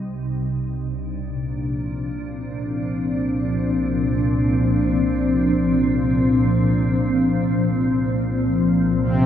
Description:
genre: ambient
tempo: free time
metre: none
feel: none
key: unclear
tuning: A4 = 439 Hz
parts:
  - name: glassy FM pad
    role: sustained chords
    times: 0.0-9.3 s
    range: C2 to D4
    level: -18 LUFS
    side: equal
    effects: ensemble chorus, built-in reverb
room: wet huge ambient reverb, RT60 7.5 s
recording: in a vast, echoing space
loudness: -18 LUFS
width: side -10 dB against mid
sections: 0.0-9.0 A section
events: none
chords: 0.0 Bb/C

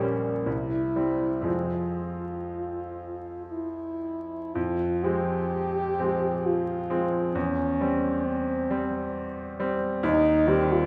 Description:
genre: classical, romantic duo for French horn and grand piano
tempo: 58-69 BPM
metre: 3/4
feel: rubato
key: F minor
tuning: A4 = 440 Hz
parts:
  - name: mellow French horn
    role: melody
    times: 0.0-10.9 s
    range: C4 to G4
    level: -29 LUFS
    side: equal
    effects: none
  - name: bright grand piano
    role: accompaniment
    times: 0.0-10.9 s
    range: Bb1 to Db4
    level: -31 LUFS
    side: equal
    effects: none
room: wet recital hall reverb, RT60 1.5 s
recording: recorded in a church or concert hall, vinyl crackle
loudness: -27 LUFS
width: mono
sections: 0.0-4.6 A section; 4.6-10.9 A section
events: none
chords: 0.5 C; 1.5 Fm; 7.4 C/E; 10.0 Cm/Eb

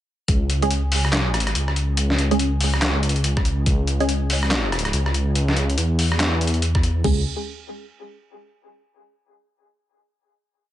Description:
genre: deep dubstep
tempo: 142 BPM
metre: 4/4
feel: swing 61% on 16ths, half-time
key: C# minor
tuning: A4 = 440 Hz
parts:
  - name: dark detuned saw bass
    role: bass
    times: 0.3-7.2 s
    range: C#2 to E2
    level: -21 LUFS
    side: equal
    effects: tube saturation
  - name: dubstep drum kit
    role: drums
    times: 0.3-0.4, 3.4-3.8, 6.8-7.2 s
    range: crash cymbal, kick drum, toms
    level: -22 LUFS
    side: equal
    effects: none
  - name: trip hop sampler-style drum kit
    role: drums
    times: 0.3-6.9 s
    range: handclaps, hi-hat, rim click, snare drum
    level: -23 LUFS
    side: left 1 dB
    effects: none
  - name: filtered dub chord stab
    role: stabs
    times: 0.6-4.2, 7.0-7.2 s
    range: G#3 to G#4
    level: -26 LUFS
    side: right 2 dB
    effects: phaser, dub echo
room: light reverb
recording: nothing above 10.6 kHz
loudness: -18 LUFS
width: side -13 dB against mid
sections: 0.3-7.0 drop; 7.0-8.7 final chord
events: drop 0.3-7.0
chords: 0.3 C#5

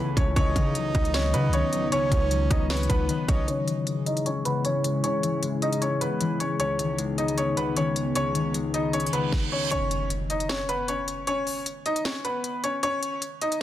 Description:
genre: hip hop, trap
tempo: 154 BPM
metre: 4/4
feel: half-time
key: unclear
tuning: A4 = 440 Hz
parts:
  - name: clear grand piano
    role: melody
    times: 0.0-13.6 s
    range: B3 to D#5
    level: -28 LUFS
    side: equal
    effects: low-pass filter, digital delay
  - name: concert harp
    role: accompaniment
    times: 0.0-11.8 s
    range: C#2 to E4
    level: -29 LUFS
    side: left 4 dB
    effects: low-pass filter
  - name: dark analog pad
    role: sustained chords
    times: 0.0-9.3 s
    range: C#3 to A4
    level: -34 LUFS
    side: right 1 dB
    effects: chorus, low-pass filter
  - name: long sustained 808-style bass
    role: bass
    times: 0.2-3.5 s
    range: B1 to C#3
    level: -27 LUFS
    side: right 1 dB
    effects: none
  - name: trap drum kit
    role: drums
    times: 0.2-13.6 s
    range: hi-hat, kick drum, snare drum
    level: -28 LUFS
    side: equal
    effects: none
  - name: breathy flute-like synth lead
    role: second line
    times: 0.4-3.5 s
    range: B4 to D#5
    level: -32 LUFS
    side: right 4 dB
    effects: chorus, digital delay
  - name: reverse cymbal and impact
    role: sound effects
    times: 9.1-11.3 s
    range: none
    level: -32 LUFS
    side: right 1 dB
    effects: none
room: light reverb, digital ambience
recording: dense, heavily limited modern master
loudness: -23 LUFS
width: side -12 dB against mid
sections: 0.0-3.5 A section; 3.5-9.7 B section; 9.7-13.6 C section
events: filter sweep 3.5-9.7; reverse cymbal 9.1-9.7; break 9.7-13.6; impact 9.7-11.3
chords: 0.4 B/C#; 3.5 C#m; 9.7 Badd9

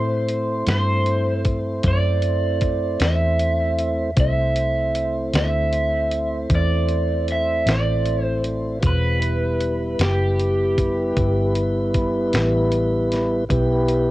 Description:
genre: slow blues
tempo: 52 BPM (dotted quarters)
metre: 12/8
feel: straight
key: unclear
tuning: A4 = 440 Hz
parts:
  - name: crunchy overdriven guitar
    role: melody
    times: 0.0-11.5 s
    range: G4 to E5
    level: -24 LUFS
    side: right 2 dB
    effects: cassette tape
  - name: mellow tonewheel organ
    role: sustained chords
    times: 0.0-14.1 s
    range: G3 to C5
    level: -23 LUFS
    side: equal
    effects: slow rotary speaker, cassette tape
  - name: vintage muted fingered electric bass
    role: bass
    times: 0.0-14.1 s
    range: E1 to A2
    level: -22 LUFS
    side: equal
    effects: none
  - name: dusty soul sampler-style drum kit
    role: drums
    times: 0.3-14.1 s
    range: hi-hat, kick drum, snare drum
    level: -23 LUFS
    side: equal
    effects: cassette tape
room: little or no reverb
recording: home recording on cassette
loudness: -18 LUFS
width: side -16 dB against mid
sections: 0.0-14.1 A section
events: none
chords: 0.0 Am; 8.8 Em

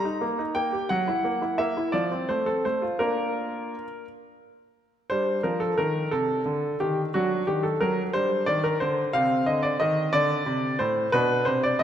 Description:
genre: classical-period piano sonatina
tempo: 59 BPM (dotted quarters)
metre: 6/8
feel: straight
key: Bb major, G minor from 5.1 s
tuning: A4 = 440 Hz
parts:
  - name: clear baby grand piano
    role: solo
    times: 0.0-11.8 s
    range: A2 to Bb5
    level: -23 LUFS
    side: equal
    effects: none
room: wet concert hall reverb, RT60 2.0 s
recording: none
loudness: -23 LUFS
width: side -10 dB against mid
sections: 0.0-5.1 A section; 5.1-11.8 B section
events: none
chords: 0.0 Eb; 0.9 Gb7; 1.9 F; 3.0 Bb; 5.1 G5; 7.1 D; 8.1 G5; 9.1 Cm; 11.1 Bm

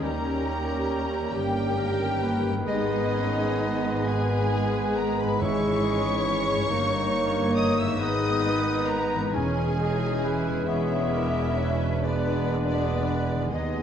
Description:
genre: classical, slow romantic movement for symphony orchestra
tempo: 40-47 BPM (dotted quarters)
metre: 6/8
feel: rubato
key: G# minor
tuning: A4 = 440 Hz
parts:
  - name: warm symphonic violin section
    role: melody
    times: 0.0-13.8 s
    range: D5 to E6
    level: -35 LUFS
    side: left 3 dB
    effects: none
  - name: clear clarinet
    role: second line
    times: 0.0-13.8 s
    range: B3 to E4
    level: -34 LUFS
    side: left 1 dB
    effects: none
  - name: rich chamber violin section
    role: second line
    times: 0.0-13.8 s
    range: D4 to E5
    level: -34 LUFS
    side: left 3 dB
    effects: none
  - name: silver concert flute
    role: second line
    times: 0.0-13.8 s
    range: D5 to E6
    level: -34 LUFS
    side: left 1 dB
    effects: none
  - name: warm cor anglais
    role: second line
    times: 0.0-13.8 s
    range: G4 to E5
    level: -36 LUFS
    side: right 1 dB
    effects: none
  - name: clear symphonic viola section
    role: accompaniment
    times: 0.0-13.8 s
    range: G#3 to C#5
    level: -33 LUFS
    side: equal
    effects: none
  - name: mellow bassoon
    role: accompaniment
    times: 0.0-13.8 s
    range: G3 to B3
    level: -35 LUFS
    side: right 4 dB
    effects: none
  - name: mellow French horn section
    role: sustained chords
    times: 0.0-13.8 s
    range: A#3 to G#4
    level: -33 LUFS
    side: left 3 dB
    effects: none
  - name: warm trombone section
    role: sustained chords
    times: 0.0-13.8 s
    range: B2 to A#3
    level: -34 LUFS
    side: right 4 dB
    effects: none
  - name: concert harp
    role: arpeggios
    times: 0.0-13.8 s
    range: G2 to C#5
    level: -34 LUFS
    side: left 7 dB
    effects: none
  - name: rich studio double bass section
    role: bass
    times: 0.0-13.8 s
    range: E1 to D#2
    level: -32 LUFS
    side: right 2 dB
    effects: none
  - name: rich symphonic cello section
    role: bass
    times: 0.0-13.8 s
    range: D#2 to G#2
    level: -32 LUFS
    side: right 2 dB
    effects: none
  - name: timpani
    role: percussion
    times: 5.4-6.7 s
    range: G#2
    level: -35 LUFS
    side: equal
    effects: none
room: wet scoring stage reverb, RT60 1.5 s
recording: worn, warbling old tape, cassette tape, warbly pitch drift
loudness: -23 LUFS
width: side -8 dB against mid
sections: 0.0-13.8 A section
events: none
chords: 0.0 D#7; 2.7 G#m; 5.4 C#m/G#; 6.7 D#7/G; 8.0 G#m; 9.3 C#m/E; 10.7 E7

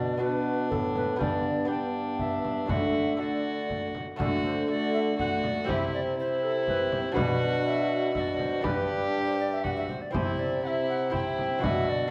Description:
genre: classical, renaissance-style consort dance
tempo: 121 BPM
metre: 3/4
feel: straight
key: D mixolydian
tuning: A4 = 440 Hz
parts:
  - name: mellow tenor recorder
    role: melody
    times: 0.0-12.1 s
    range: A4 to G5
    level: -36 LUFS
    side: equal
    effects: none
  - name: warm violin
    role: second line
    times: 0.0-12.1 s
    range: D4 to G4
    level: -36 LUFS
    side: equal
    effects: none
  - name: dark trombone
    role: accompaniment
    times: 0.0-12.1 s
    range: A3 to D4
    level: -36 LUFS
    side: equal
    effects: none
  - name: lute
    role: accompaniment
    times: 0.0-12.1 s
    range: G2 to C5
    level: -36 LUFS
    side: equal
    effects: none
  - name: dark bassoon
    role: bass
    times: 0.0-12.1 s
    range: G2 to D3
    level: -34 LUFS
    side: equal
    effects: none
  - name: frame drum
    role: percussion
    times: 0.7-11.9 s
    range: none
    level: -36 LUFS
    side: equal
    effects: none
room: wet recital hall reverb, RT60 1.4 s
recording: none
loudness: -28 LUFS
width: mono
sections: 0.0-4.2 A section; 4.2-12.1 A section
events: none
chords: 0.0 Bm; 1.2 G; 2.7 D; 5.7 C; 7.2 Bm; 8.6 G; 10.1 C

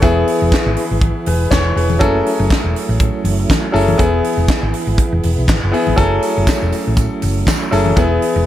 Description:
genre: disco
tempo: 121 BPM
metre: 4/4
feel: swing 56% on 16ths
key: F# minor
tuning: A4 = 445 Hz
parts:
  - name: clear concert grand piano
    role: accompaniment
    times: 0.0-8.5 s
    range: F#3 to C#5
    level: -18 LUFS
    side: left 2 dB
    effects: none
  - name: mellow tonewheel organ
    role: sustained chords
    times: 0.0-8.5 s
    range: E3 to B4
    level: -23 LUFS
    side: right 2 dB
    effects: chorus vibrato, slow rotary speaker
  - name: hollow-body short-scale fingered electric bass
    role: bass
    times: 0.0-8.4 s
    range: E1 to B1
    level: -17 LUFS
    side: equal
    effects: none
  - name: tight funk drum kit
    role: drums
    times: 0.0-8.3 s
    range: handclaps, hi-hat, kick drum, snare drum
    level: -18 LUFS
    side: equal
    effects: none
  - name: congas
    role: percussion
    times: 0.0-8.1 s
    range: none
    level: -25 LUFS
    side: left 4 dB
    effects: none
  - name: tambourine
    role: percussion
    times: 6.0-8.1 s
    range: none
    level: -34 LUFS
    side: right 9 dB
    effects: none
room: studio ambience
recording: none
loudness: -13 LUFS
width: side -12 dB against mid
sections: 0.0-8.5 A section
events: none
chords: 0.0 E; 2.0 F#m7; 4.0 E; 6.0 F#m7

